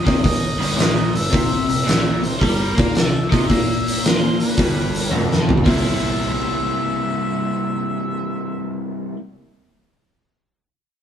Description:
blues rock power trio and southern rock; 111 BPM; 4/4; swing 68% on 8ths; C mixolydian; A4 = 440 Hz
warm harmonica; melody; 0.0-8.8 s; Bb4 to E5; -26 LUFS; left 1 dB; overdrive
overdriven electric guitar; riff; 0.0-9.2 s; F2 to E4; -23 LUFS; left 1 dB
clear baby grand piano; bass; 0.0-8.8 s; F1 to Bb2; -26 LUFS; right 1 dB
oversized low-tuned drum kit; drums; 0.1-5.8 s; hi-hat, kick drum, snare drum, toms; -18 LUFS; equal
moderate stone room reverb, RT60 1.3 s; band playing live in one room; -17 LUFS; side -9 dB against mid
0.0-5.7 A section; 5.7-10.0 B section
drum fill 5.1-5.7
0.0 G5; 1.3 C7; 4.6 G7; 5.7 C7
0.24 0.79 | 1.33 1.87 2.41 2.95 | 3.50 4.04 4.58 5.12 | 5.66 6.20 6.75 7.29 | 7.83 8.37 8.91

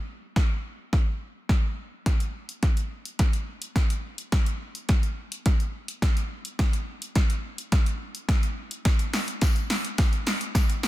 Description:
pop; 106 BPM; 4/4; straight
punchy analog drum machine; drums; 0.4-10.9 s; hi-hat, kick drum, snare drum; -23 LUFS; equal; soft clipping on snare
tambourine; percussion; 8.9-10.9 s; -42 LUFS; left 6 dB
little or no reverb; dense, heavily limited modern master; -24 LUFS; side -16 dB against mid
0.0-10.9 A section
build-up 0.0-10.9; drum fill 0.0-10.9
0.36 0.93 1.50 | 2.06 2.63 3.19 3.76 | 4.33 4.89 5.46 6.02 | 6.59 7.16 7.72 8.29 | 8.85 9.42 9.99 10.55

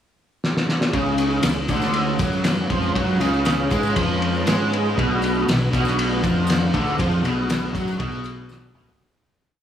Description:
psychedelic rock; 119 BPM; 4/4; straight; A4 = 442 Hz
cloth-damped thuddy drum kit; drums; 0.4-9.0 s; kick drum, ride cymbal, snare drum, toms; -23 LUFS; left 1 dB
ensemble organ-string; sustained chords; 0.9-9.0 s; G#3 to F#5; -30 LUFS; right 3 dB; ensemble chorus
overdriven semi-hollow guitar; riff; 0.9-9.0 s; B2 to G#3; -22 LUFS; equal; flanger
fuzz fingered electric bass; bass; 0.9-9.0 s; B1 to G#2; -26 LUFS; equal; overdrive
tambourine; percussion; 1.2-8.9 s; -42 LUFS; left 10 dB
light reverb, small room reverb; -18 LUFS; side -9 dB against mid
0.0-0.9 pickup bar; 0.9-9.0 groove
drum fill 0.4-0.9, 8.5-9.0; fade-out 7.0-9.0
0.0 N.C.; 0.9 C#7; 5.0 Bm7
0.44 | 0.94 1.45 1.95 2.45 | 2.96 3.46 3.97 4.47 | 4.97 5.48 5.98 6.49 | 6.99 7.49 7.99 8.50

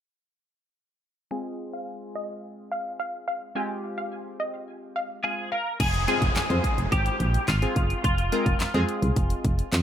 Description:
dance-pop; 107 BPM; 4/4; straight; F minor; A4 = 440 Hz
wide unison pluck; melody; 1.3-5.6 s; Eb5 to Ab5; -32 LUFS; equal; sidechain pumping, low-pass filter, digital delay
chorused retro synth keys; accompaniment; 1.3-9.6 s; Ab3 to C5; -32 LUFS; left 1 dB; sidechain pumping, low-pass filter
twelve-string electric guitar; melody; 5.2-9.8 s; F4 to Bb4; -28 LUFS; equal; ensemble chorus, digital delay
solid FM bass; bass; 5.8-9.8 s; F1 to F2; -25 LUFS; equal; sidechain pumping
pop drum kit; drums; 5.8-9.8 s; crash cymbal, handclaps, hi-hat, kick drum, snare drum; -27 LUFS; equal
downlifter; sound effects; 5.8-9.8 s; -36 LUFS; equal
digital ambience; -24 LUFS; side -10 dB against mid
1.3-5.8 A section; 5.8-9.8 B section
filter sweep 1.3-5.8
1.3 Fm; 5.5 N.C.; 5.8 Fm
| 1.31 1.88 2.44 3.00 | 3.56 4.12 4.68 5.24 | 5.80 6.36 6.92 7.48 | 8.04 8.60 9.16 9.72

